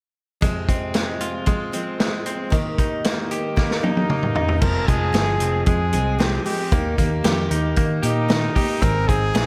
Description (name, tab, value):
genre	jangly indie pop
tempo	114 BPM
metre	4/4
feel	straight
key	unclear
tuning	A4 = 441 Hz
part	picked steel-string acoustic guitar	accompaniment	0.4-9.5 s	F2 to Ab4	-30 LUFS	equal	none
part	direct-recorded clean electric guitar	arpeggios	0.4-9.5 s	Eb3 to Ab4	-29 LUFS	equal	none
part	vintage drum kit	drums	0.4-9.5 s	crash cymbal, hi-hat, kick drum, snare drum, toms	-24 LUFS	equal	none
part	clear trumpet	melody	3.8-9.5 s	Eb4 to Bb4	-27 LUFS	equal	none
part	vintage muted picked electric bass	bass	4.6-9.5 s	F1 to Eb3	-25 LUFS	equal	none
room	moderate lush hall reverb, RT60 2.0 s, studio reverb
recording	big arena sound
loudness	-21 LUFS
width	mono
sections	0.4-4.6 A section; 4.6-9.5 B section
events	drum fill 3.6-4.6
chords	0.4 Fm; 2.5 Eb; 4.6 Fm; 6.7 Eb; 8.8 Ab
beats	| 0.42 0.95 1.47 2.00 | 2.52 3.05 3.57 4.10 | 4.62 5.14 5.67 6.20 | 6.72 7.25 7.77 8.30 | 8.82 9.35